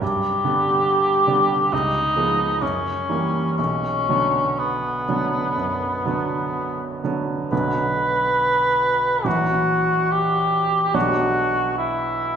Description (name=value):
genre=classical, romantic duo for cor anglais and grand piano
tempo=59-73 BPM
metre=4/4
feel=rubato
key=B minor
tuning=A4 = 440 Hz
part: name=mellow cor anglais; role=melody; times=0.0-12.4 s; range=B3 to B4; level=-20 LUFS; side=left 1 dB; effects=none
part: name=bright baby grand piano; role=accompaniment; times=0.0-12.4 s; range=A#1 to D4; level=-24 LUFS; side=right 3 dB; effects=none
room=wet recital hall reverb, RT60 1.8 s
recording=recorded in a church or concert hall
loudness=-18 LUFS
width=side -8 dB against mid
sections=0.0-7.5 A section; 7.5-12.4 A section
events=none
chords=0.0 G; 1.7 C#7; 2.6 F#7b9; 3.6 Bm; 9.3 F#7/A#; 11.0 Bm